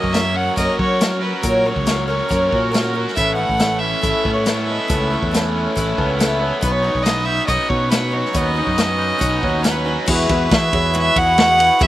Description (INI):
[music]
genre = folk rock and heartland rock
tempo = 139 BPM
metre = 4/4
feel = straight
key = E major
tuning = A4 = 440 Hz
[part]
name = warm fiddle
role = melody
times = 0.0-11.9 s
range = A#4 to F#5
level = -20 LUFS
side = equal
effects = none
[part]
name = clear upright piano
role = accompaniment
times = 0.0-11.9 s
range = D#4 to G#5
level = -29 LUFS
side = right 2 dB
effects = slapback echo
[part]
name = picked twelve-string acoustic guitar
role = accompaniment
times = 0.0-11.9 s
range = F#2 to B4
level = -24 LUFS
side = left 2 dB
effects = none
[part]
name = accordion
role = sustained chords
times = 0.0-11.9 s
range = C#4 to C#5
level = -26 LUFS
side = right 2 dB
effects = none
[part]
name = cranked stack guitar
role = riff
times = 0.0-10.1 s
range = A2 to C#5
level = -24 LUFS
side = right 1 dB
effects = overdrive, spring reverb, slapback echo
[part]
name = fingered electric bass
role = bass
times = 0.0-11.9 s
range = A1 to F#3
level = -23 LUFS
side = equal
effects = none
[part]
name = vintage drum kit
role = drums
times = 0.0-11.9 s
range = crash cymbal, hi-hat, kick drum, ride cymbal, snare drum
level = -20 LUFS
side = left 1 dB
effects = none
[sound]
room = little or no reverb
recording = recorded outdoors, with no room sound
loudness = -15 LUFS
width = side -14 dB against mid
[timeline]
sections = 0.0-10.1 A section; 10.1-11.9 B section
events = upright piano fill 9.2-10.1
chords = 0.0 F#; 3.2 Aadd9; 6.6 Badd9; 10.1 Eadd9